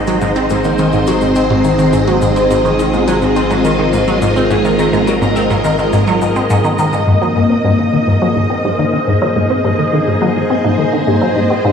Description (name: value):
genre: ambient, sequencer-driven space music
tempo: 105 BPM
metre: 4/4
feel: straight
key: unclear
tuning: A4 = 439 Hz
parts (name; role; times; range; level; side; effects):
- string machine, full ensemble; sustained chords; 0.0-11.7 s; Ab3 to Eb5; -14 LUFS; equal; phaser, ensemble chorus
- resonant blip pluck; riff; 0.0-11.7 s; Ab2 to C4; -14 LUFS; equal; phaser, tape echo
- round analog bass; bass; 0.0-7.0 s; Ab1; -24 LUFS; equal; none
- shaker and congas; percussion; 0.1-7.0 s; none; -29 LUFS; right 2 dB; tape echo
room: wet concert hall reverb, RT60 2.4 s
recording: worn, warbling old tape, cassette tape, warbly pitch drift, studio reverb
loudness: -11 LUFS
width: side -7 dB against mid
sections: 0.0-7.1 A section; 7.1-11.7 B section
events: none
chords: 0.0 Abadd9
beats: | 0.22 0.79 1.36 1.93 | 2.50 3.08 3.65 4.22 | 4.79 5.36 5.93 6.50 | 7.08 7.65 8.22 8.79 | 9.36 9.93 10.50 11.07 | 11.65